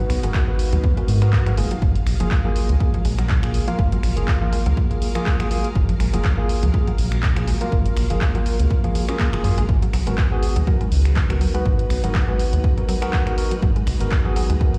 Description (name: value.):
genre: deep house.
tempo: 122 BPM.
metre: 4/4.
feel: swing 55% on 16ths.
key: unclear.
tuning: A4 = 441 Hz.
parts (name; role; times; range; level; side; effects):
soft string machine; sustained chords; 0.0-14.8 s; F#3 to E#5; -36 LUFS; equal; ensemble chorus, sidechain pumping.
mallet-like synth pluck; arpeggios; 0.0-14.6 s; E#3 to C#4; -34 LUFS; equal; chorus, sidechain pumping, tape echo.
tine electric piano; stabs; 0.0-14.8 s; A#3 to B4; -30 LUFS; equal; sidechain pumping, analog delay.
round analog bass; bass; 0.1-14.6 s; F#1 to G#2; -22 LUFS; equal; sidechain pumping.
punchy analog drum machine; drums; 0.1-14.8 s; finger snaps, handclaps, hi-hat; -33 LUFS; equal; none.
electronic kick drum; drums; 0.3-14.7 s; none; -22 LUFS; equal; none.
room: digital ambience.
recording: played on a big sound system in a bare room, large studio reverb, vinyl crackle.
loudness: -20 LUFS.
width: mono.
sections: 0.0-14.8 A section.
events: none.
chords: 0.0 G#m7; 1.6 F#maj9; 9.7 G#m7.